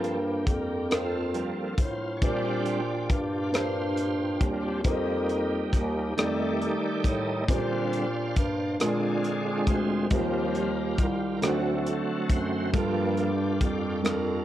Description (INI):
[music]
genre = slow gospel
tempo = 46 BPM (dotted quarters)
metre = 6/8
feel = straight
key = Bb major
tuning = A4 = 440 Hz
[part]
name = dark baby grand piano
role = accompaniment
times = 0.0-14.4 s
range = G2 to D5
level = -30 LUFS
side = equal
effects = none
[part]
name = bright tonewheel organ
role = sustained chords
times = 0.0-14.4 s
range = D3 to F5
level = -31 LUFS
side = right 2 dB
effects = fast rotary speaker, overdrive, chorus vibrato
[part]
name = breathy bass clarinet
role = bass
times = 0.0-14.4 s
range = C2 to Bb2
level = -30 LUFS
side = left 1 dB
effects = none
[part]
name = tight funk drum kit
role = drums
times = 0.0-14.3 s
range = hi-hat, kick drum, rim click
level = -27 LUFS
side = equal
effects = none
[sound]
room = light reverb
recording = worn, warbling old tape, cassette tape, warbly pitch drift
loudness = -25 LUFS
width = side -13 dB against mid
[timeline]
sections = 0.0-14.4 A section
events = tonewheel organ solo 0.0-14.4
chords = 0.0 Gm11; 2.2 Bb69; 4.8 F7sus4; 6.2 F13; 7.5 Bb69; 8.8 Bb7; 10.1 Eb69; 11.4 D7; 12.7 Gm9